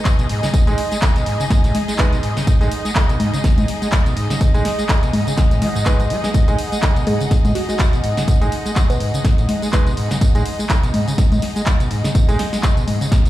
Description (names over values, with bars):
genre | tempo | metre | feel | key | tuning
acid house | 124 BPM | 4/4 | swing 57% on 16ths | G# phrygian | A4 = 440 Hz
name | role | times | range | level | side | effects
mallet-like synth pluck | melody | 0.0-0.1, 7.1-9.2 s | F#4 to B4 | -29 LUFS | right 2 dB | chorus, phaser, tape echo
warm analog pad | sustained chords | 0.0-13.3 s | D#5 | -29 LUFS | right 1 dB | chorus, sidechain pumping
punchy analog drum machine | drums | 0.0-13.3 s | congas, handclaps, hi-hat, snare drum, tambourine | -23 LUFS | left 1 dB | none
rich symphonic string section | texture | 0.0-13.3 s | D#4 to C#6 | -28 LUFS | left 2 dB | sidechain pumping
electronic kick drum | drums | 0.1-13.2 s | none | -16 LUFS | equal | none
overdriven acid bass | riff | 0.2-13.3 s | G#2 to G#3 | -22 LUFS | equal | distortion, tube saturation, sidechain pumping, tape echo
bright concert grand piano | stabs | 0.7-12.4 s | G#3 to B4 | -28 LUFS | right 4 dB | tape echo
room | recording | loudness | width
light reverb | played on a big sound system in a bare room, large studio reverb | -15 LUFS | side -14 dB against mid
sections
0.0-13.3 A section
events
none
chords
0.0 G#5